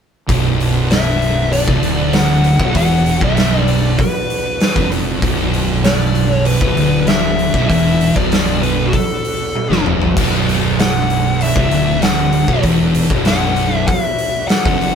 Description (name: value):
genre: stoner and doom metal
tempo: 97 BPM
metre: 4/4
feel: straight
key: B minor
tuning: A4 = 440 Hz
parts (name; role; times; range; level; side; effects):
- bright tonewheel organ; sustained chords; 0.3-14.9 s; B3 to F#4; -31 LUFS; left 2 dB; none
- thick fuzz guitar; riff; 0.3-14.9 s; B1 to E#2; -20 LUFS; left 4 dB; distortion
- thick fuzz guitar; riff; 0.3-14.9 s; B1 to E#2; -18 LUFS; right 6 dB; distortion
- fuzz fingered electric bass; bass; 0.3-14.9 s; B0 to E#1; -21 LUFS; left 1 dB; overdrive
- oversized low-tuned drum kit; drums; 0.3-14.9 s; crash cymbal, hi-hat, kick drum, snare drum, toms; -18 LUFS; equal; none
- fuzz lead guitar; melody; 0.9-14.9 s; F#4 to F#5; -20 LUFS; left 2 dB; distortion
room: moderate studio reverb, RT60 0.5 s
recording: band playing live in one room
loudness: -12 LUFS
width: side -7 dB against mid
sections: 0.3-14.9 A section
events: drum fill 9.5-10.2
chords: 0.3 Bm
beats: | 0.30 0.91 1.53 2.14 | 2.76 3.37 3.99 4.61 | 5.22 5.84 6.46 7.07 | 7.69 8.31 8.93 9.55 | 10.16 10.78 11.40 12.02 | 12.64 13.26 13.88 14.50